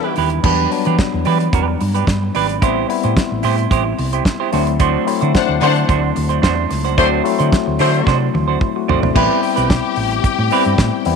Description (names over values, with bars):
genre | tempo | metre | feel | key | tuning
disco | 110 BPM | 4/4 | straight | unclear | A4 = 441 Hz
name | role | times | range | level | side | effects
clear symphonic string section | second line | 0.0-0.1, 5.3-5.9, 9.2-11.2 s | D4 to G5 | -21 LUFS | left 10 dB | none
semi-hollow electric guitar | accompaniment | 0.0-11.0 s | C4 to C5 | -19 LUFS | right 14 dB | none
tine electric piano | accompaniment | 0.0-11.2 s | E3 to C5 | -20 LUFS | left 13 dB | medium stereo tremolo
warm horn section | stabs | 0.0-0.1, 7.0-8.1 s | G3 to C5 | -21 LUFS | left 11 dB | none
hollow-body short-scale fingered electric bass | bass | 0.2-11.2 s | Ab1 to E3 | -19 LUFS | right 1 dB | none
damped 70s drum kit | drums | 0.2-11.2 s | crash cymbal, hi-hat, kick drum, snare drum, toms | -19 LUFS | right 1 dB | none
room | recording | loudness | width
moderate spring reverb, RT60 2.4 s | 1960s-style stereo with parts hard left and right | -14 LUFS | side -5 dB against mid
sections
0.4-9.2 A section; 9.2-11.2 B section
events
band accent 0.0-0.4, 7.0-9.2; drum fill 8.1-9.2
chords
0.4 Em7; 2.6 Am7; 4.5 D7; 9.2 Am9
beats
| 0.44 0.98 1.53 2.08 | 2.62 3.17 3.71 4.26 | 4.80 5.34 5.89 6.43 | 6.98 7.52 8.07 8.61 | 9.16 9.70 10.24 10.79